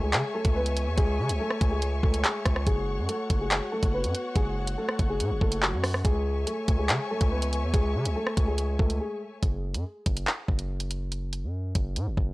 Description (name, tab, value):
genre	hip hop, drill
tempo	142 BPM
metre	4/4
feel	half-time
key	unclear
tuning	A4 = 441 Hz
part	dark concert grand piano	melody	0.0-9.2 s	F#3 to B4	-31 LUFS	left 1 dB	low-pass filter, analog delay
part	dark symphonic string section	sustained chords	0.0-9.4 s	F#4 to C#6	-36 LUFS	left 3 dB	none
part	distorted 808-style bass	bass	0.0-12.3 s	F#1 to C#3	-29 LUFS	equal	distortion
part	drill drum kit	drums	0.1-12.3 s	handclaps, hi-hat, kick drum, rim click	-26 LUFS	equal	none
room	studio reverb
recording	dry, gritty hardware recording, transformer saturation, cassette tape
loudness	-25 LUFS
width	side -20 dB against mid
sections	0.0-9.4 A section; 9.4-12.3 B section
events	break 9.0-9.4, 9.4-12.3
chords	0.0 C#m; 2.7 F#m; 6.0 C#m; 9.4 N.C.